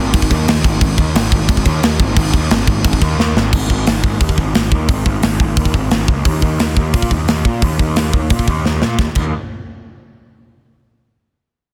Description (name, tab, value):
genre	heavy metal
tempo	176 BPM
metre	4/4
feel	straight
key	unclear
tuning	A4 = 440 Hz
part	fuzz picked electric bass	bass	0.0-9.3 s	Ab1 to Bb2	-19 LUFS	equal	overdrive
part	tight metal drum kit	drums	0.1-9.2 s	crash cymbal, hi-hat, kick drum, snare drum	-17 LUFS	equal	none
room	little or no reverb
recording	dense, heavily limited modern master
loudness	-15 LUFS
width	mono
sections	0.0-3.5 A section; 3.5-9.0 B section; 9.0-10.4 C section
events	drum fill 3.2-3.5, 8.6-9.0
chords	none